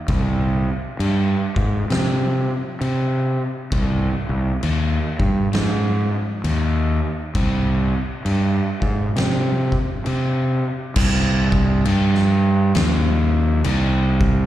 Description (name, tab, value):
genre	stoner and doom metal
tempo	66 BPM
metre	4/4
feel	swing 62% on 8ths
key	C minor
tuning	A4 = 440 Hz
part	fuzz fingered electric bass	bass	0.1-14.5 s	C2 to C3	-18 LUFS	equal	overdrive
part	oversized low-tuned drum kit	drums	0.1-14.4 s	crash cymbal, kick drum, snare drum	-24 LUFS	equal	none
room	little or no reverb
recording	live gig heard through the venue's PA, recital hall reverb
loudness	-17 LUFS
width	side -13 dB against mid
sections	0.0-11.0 A section; 11.0-14.5 B section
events	none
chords	none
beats	| 0.08 0.99 1.90 2.81 | 3.72 4.63 5.53 6.44 | 7.35 8.25 9.15 10.06 | 10.96 11.85 12.75 13.65